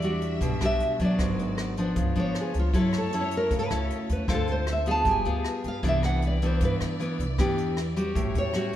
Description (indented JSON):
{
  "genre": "bossa nova",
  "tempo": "155 BPM",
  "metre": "4/4",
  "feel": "straight",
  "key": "unclear",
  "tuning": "A4 = 441 Hz",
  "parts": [
    { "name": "nylon-string guitar", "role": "melody", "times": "0.0-8.7 s", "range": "E4 to A5", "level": "-29 LUFS", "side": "equal", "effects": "none" },
    { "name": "nylon-string guitar", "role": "accompaniment", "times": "0.0-8.8 s", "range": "G2 to A4", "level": "-28 LUFS", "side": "left 1 dB", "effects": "none" },
    { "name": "warm symphonic string section", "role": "sustained chords", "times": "0.0-8.8 s", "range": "G3 to E5", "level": "-38 LUFS", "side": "equal", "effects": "none" },
    { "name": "upright bass", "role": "bass", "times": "0.0-8.5 s", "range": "G1 to G2", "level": "-29 LUFS", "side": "equal", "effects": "none" },
    { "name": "jazz brush drum kit", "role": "drums", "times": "0.0-8.8 s", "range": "hi-hat, kick drum, rim click", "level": "-32 LUFS", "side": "right 1 dB", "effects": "none" }
  ],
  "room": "moderate plate reverb, RT60 1.9 s",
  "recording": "heard from further back in the room",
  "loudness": "-24 LUFS",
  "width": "side -12 dB against mid",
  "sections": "0.0-8.8 A section",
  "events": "nylon-string guitar solo 0.0-8.8",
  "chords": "0.0 Em9; 1.2 G#m7b5; 2.0 C#7b9; 2.7 F#m7; 4.3 Dm7; 5.1 G7b9; 5.8 Cmaj9; 7.4 Em7; 8.2 A13"
}